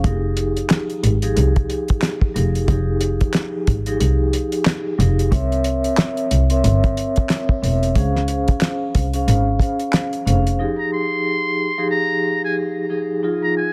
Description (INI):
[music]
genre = hip hop, boom-bap hip-hop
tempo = 91 BPM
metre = 4/4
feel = swing 60% on 16ths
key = F minor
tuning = A4 = 440 Hz
[part]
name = vibraphone with soft mallets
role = accompaniment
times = 0.0-13.7 s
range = F3 to F5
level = -24 LUFS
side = equal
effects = cassette tape, high-pass filter, low-pass filter
[part]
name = rich double bass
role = bass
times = 0.0-10.4 s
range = E1 to Db2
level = -21 LUFS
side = equal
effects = none
[part]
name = cloth-damped thuddy drum kit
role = drums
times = 0.0-10.6 s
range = handclaps, hi-hat, kick drum, snare drum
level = -22 LUFS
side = equal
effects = none
[part]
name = trumpet with metal mute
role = melody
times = 10.8-13.7 s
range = Ab5 to C6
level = -24 LUFS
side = equal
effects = high-pass filter, low-pass filter, digital delay
[sound]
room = small room ambience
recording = dense, heavily limited modern master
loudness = -19 LUFS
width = mono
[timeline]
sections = 0.0-10.6 A section; 10.6-13.7 B section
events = none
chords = 0.0 Fm9; 5.3 C7b9; 8.0 Dbmaj7; 10.6 Fm9